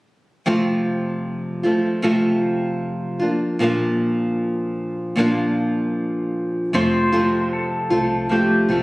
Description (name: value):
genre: acoustic pop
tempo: 77 BPM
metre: 4/4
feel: swing 60% on 16ths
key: F major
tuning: A4 = 440 Hz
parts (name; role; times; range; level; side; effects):
- nylon-string guitar; accompaniment; 0.5-8.8 s; F2 to F4; -19 LUFS; equal; none
- clean lap steel guitar; melody; 6.7-8.8 s; G4 to C5; -22 LUFS; left 1 dB; none
- vintage muted fingered electric bass; bass; 6.7-8.8 s; F1 to C2; -31 LUFS; equal; none
room: light reverb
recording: recorded on a phone in the room, studio reverb, compression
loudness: -18 LUFS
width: side -21 dB against mid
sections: 0.5-6.7 A section; 6.7-8.8 B section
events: none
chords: 0.5 F; 3.2 Bb; 6.7 F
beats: | 0.46 1.25 2.03 2.81 | 3.60 4.38 5.17 5.95 | 6.73 7.52 8.30